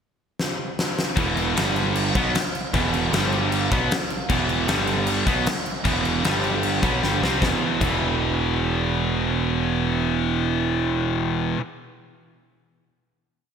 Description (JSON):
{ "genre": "hard rock", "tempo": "154 BPM", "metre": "4/4", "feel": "straight", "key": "E minor", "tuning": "A4 = 439 Hz", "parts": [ { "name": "huge arena drum kit", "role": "drums", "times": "0.4-7.9 s", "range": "crash cymbal, kick drum, snare drum", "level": "-25 LUFS", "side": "left 1 dB", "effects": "gated reverb" }, { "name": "distorted electric guitar", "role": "riff", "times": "1.2-11.6 s", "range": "E2 to C4", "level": "-25 LUFS", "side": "right 9 dB", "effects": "distortion" }, { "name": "scooped high-gain guitar", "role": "riff", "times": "1.2-11.6 s", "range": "E2 to C4", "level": "-25 LUFS", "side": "left 10 dB", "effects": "distortion" }, { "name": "fuzz picked electric bass", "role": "bass", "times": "1.2-11.5 s", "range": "E1 to C2", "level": "-27 LUFS", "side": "left 1 dB", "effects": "overdrive" } ], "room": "light reverb, studio reverb", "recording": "bright 1980s-style digital production", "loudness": "-20 LUFS", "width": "side -7 dB against mid", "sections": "0.0-1.2 pickup bar; 1.2-7.4 riff; 7.4-10.5 final chord", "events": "drum fill 0.4-1.2, 7.0-7.4", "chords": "0.0 N.C.; 1.2 E5; 1.6 G5; 2.2 E5; 3.1 G5; 3.7 E5; 4.7 G5; 5.3 E5; 6.2 G5; 6.8 Gadd11; 7.4 E5", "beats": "0.00 0.39 0.78 | 1.18 1.57 1.96 2.35 | 2.74 3.13 3.52 3.91 | 4.30 4.69 5.08 5.47 | 5.86 6.25 6.64 7.03 | 7.42 7.81 8.20 8.59 | 8.98 9.37 9.76 10.15" }